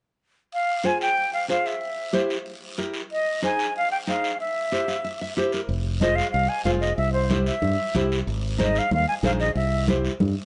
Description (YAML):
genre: latin, cumbia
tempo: 186 BPM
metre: 4/4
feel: straight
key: F minor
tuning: A4 = 442 Hz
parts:
  - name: jazz flute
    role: melody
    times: 0.5-9.9 s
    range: C5 to Ab5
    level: -27 LUFS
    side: equal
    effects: slapback echo
  - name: guiro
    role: percussion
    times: 0.5-10.4 s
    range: none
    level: -38 LUFS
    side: equal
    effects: none
  - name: nylon-string guitar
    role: accompaniment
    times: 0.8-10.1 s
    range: Eb4 to F5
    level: -30 LUFS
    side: equal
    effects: none
  - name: modern bright fingered electric bass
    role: bass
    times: 5.7-10.3 s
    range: F1 to G2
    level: -27 LUFS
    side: equal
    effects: none
  - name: congas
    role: percussion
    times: 6.0-10.4 s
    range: none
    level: -30 LUFS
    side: equal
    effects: none
room: light reverb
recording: nothing above 10.3 kHz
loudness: -24 LUFS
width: mono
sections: 0.5-5.7 A section; 5.7-10.4 B section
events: nylon-string guitar fill 4.7-5.7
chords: 0.5 Fm; 1.8 C7; 3.1 Ab; 4.4 C; 5.7 Fm; 7.0 C; 8.3 Ab; 9.6 C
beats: | 0.52 0.84 1.16 1.49 | 1.81 2.13 2.46 2.78 | 3.10 3.43 3.75 4.07 | 4.40 4.72 5.04 5.37 | 5.69 6.01 6.33 6.66 | 6.98 7.30 7.62 7.95 | 8.27 8.59 8.92 9.24 | 9.56 9.88 10.21